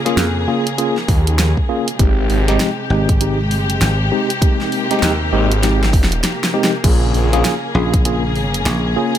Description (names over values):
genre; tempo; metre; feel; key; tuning
glitch hop; 99 BPM; 4/4; swing 61% on 16ths; Bb dorian; A4 = 440 Hz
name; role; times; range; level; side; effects
warm studio string section; sustained chords; 0.0-9.2 s; C3 to Ab4; -22 LUFS; left 2 dB; sidechain pumping
tine electric piano; stabs; 0.1-9.1 s; Ab3 to Ab4; -20 LUFS; equal; medium stereo tremolo, sidechain pumping, dub echo
pop drum kit; drums; 0.1-9.2 s; crash cymbal, hi-hat, snare drum; -21 LUFS; equal; none
dry thumbed slap bass; bass; 0.2-8.9 s; Ab1 to F2; -18 LUFS; equal; none
phased detuned saw bass; bass; 1.1-7.4 s; Ab1 to Eb2; -16 LUFS; equal; phaser, tube saturation
electronic kick drum; drums; 1.1-8.0 s; none; -15 LUFS; equal; none
room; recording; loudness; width
digital ambience; none; -14 LUFS; side -10 dB against mid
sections
0.0-9.2 A section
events
drum fill 5.6-6.8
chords
0.0 Bbm7; 2.0 Abmaj7; 6.8 Bbm7